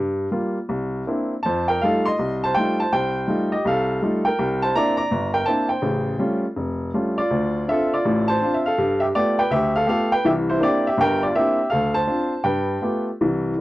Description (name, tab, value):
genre	solo jazz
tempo	164 BPM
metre	4/4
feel	swing 64% on 8ths, rubato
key	C mixolydian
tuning	A4 = 438 Hz
part	warm baby grand piano	solo	0.0-13.6 s	E#1 to C6	-19 LUFS	equal	none
room	light reverb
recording	dry, close 1970s-style studio recording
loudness	-19 LUFS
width	side -17 dB against mid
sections	0.0-13.2 A section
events	none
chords	0.0 Gm7; 0.7 C9; 1.4 F9; 4.4 C9; 5.8 A7alt; 7.3 Dm7; 8.8 G9; 10.2 C9; 11.7 Dm7; 12.4 G9